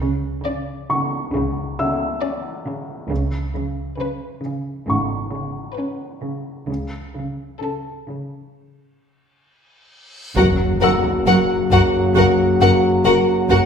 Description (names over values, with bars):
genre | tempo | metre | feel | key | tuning
cinematic, suspense film score | 67 BPM | 4/4 | straight | unclear | A4 = 440 Hz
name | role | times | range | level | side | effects
warm studio cello section | riff | 0.0-13.7 s | F#2 to C#4 | -26 LUFS | right 1 dB | none
warm studio cello section | bass | 0.0-13.6 s | F#2 to C#3 | -23 LUFS | right 2 dB | none
warm studio double bass section | bass | 0.0-13.6 s | F#1 to C#2 | -28 LUFS | right 2 dB | none
felt-muted upright piano | texture | 0.0-13.7 s | E5 to E6 | -27 LUFS | left 2 dB | none
rich studio violin section | melody | 0.5-13.6 s | A4 to F#5 | -23 LUFS | left 6 dB | none
reverse cymbal and impact | sound effects | 10.1-13.7 s | none | -29 LUFS | equal | none
dark studio violin section | second line | 10.4-13.6 s | A#4 | -22 LUFS | left 5 dB | none
rich studio viola section | accompaniment | 10.4-13.6 s | F#4 | -23 LUFS | right 2 dB | none
bright trombone section | sustained chords | 10.4-13.7 s | C#3 to F#3 | -22 LUFS | left 2 dB | none
mellow French horn section | sustained chords | 10.4-13.7 s | A#3 to F#4 | -19 LUFS | right 1 dB | none
taiko ensemble | drums | 10.4-13.7 s | none | -28 LUFS | left 1 dB | none
room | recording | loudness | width
wet recital hall reverb, RT60 1.5 s | recorded in a church or concert hall | -17 LUFS | side -7 dB against mid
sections
0.0-10.4 A section; 10.4-13.7 B section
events
break 8.5-10.4; reverse cymbal 10.1; impact 10.4-13.7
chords
0.0 Dsus2/C#; 3.1 C#m7; 6.7 N.C.; 10.4 F#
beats
0.46 1.34 2.22 | 3.10 3.99 4.88 5.77 | 6.68 7.61 8.53 9.45 | 10.37 11.27 12.17 13.06